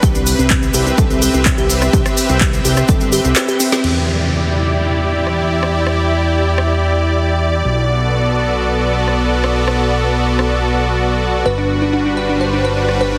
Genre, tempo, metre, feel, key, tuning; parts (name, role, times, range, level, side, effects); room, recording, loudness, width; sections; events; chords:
progressive house; 126 BPM; 4/4; straight; E minor; A4 = 440 Hz
supersaw pad; sustained chords; 0.0-13.2 s; G3 to E5; -20 LUFS; equal; sidechain pumping
glassy wavetable pluck; arpeggios; 0.0-3.8, 11.5-13.2 s; C4 to C5; -21 LUFS; equal; chorus, sidechain pumping, digital delay
fat analog bass; bass; 0.0-13.2 s; G1 to E2; -20 LUFS; equal; sidechain pumping
deep house drum kit; drums; 0.0-13.0 s; crash cymbal, handclaps, hi-hat, rim click, snare drum; -23 LUFS; equal; small room ambience
electronic kick drum; drums; 0.0-3.0 s; -18 LUFS; equal; overdrive, small room ambience
tube shaker; percussion; 0.0-3.8 s; -26 LUFS; equal
downlifter; sound effects; 3.8-7.6 s; -26 LUFS; equal
moderate recital hall reverb, RT60 1.7 s, digital ambience; heavily compressed radio sound; -15 LUFS; mono
0.0-3.8 A section; 3.8-13.2 B section
drum fill 3.4-3.8; band accent 3.7
0.0 Cmaj7; 3.8 Em7; 7.6 Bm7; 11.5 Gmaj7